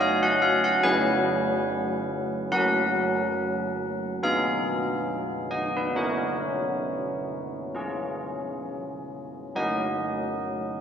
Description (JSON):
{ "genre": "classical, tune for church bells", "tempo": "69 BPM", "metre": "4/4", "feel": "straight", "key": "F# major", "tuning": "A4 = 440 Hz", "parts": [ { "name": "old church bells", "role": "solo", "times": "0.0-10.8 s", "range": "F#3 to G#5", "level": "-24 LUFS", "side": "equal", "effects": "none" } ], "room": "wet church reverb, RT60 2.8 s", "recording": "none", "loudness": "-24 LUFS", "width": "side -8 dB against mid", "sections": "0.0-10.8 A section", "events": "none", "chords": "0.0 C#5/F#; 2.5 F#; 4.2 G#m/B; 6.0 F#/C#; 7.8 C#; 9.6 F#", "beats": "0.83 1.68 | 2.53 3.37 4.23 5.10 | 5.99 6.88 7.77 8.66 | 9.55 10.43" }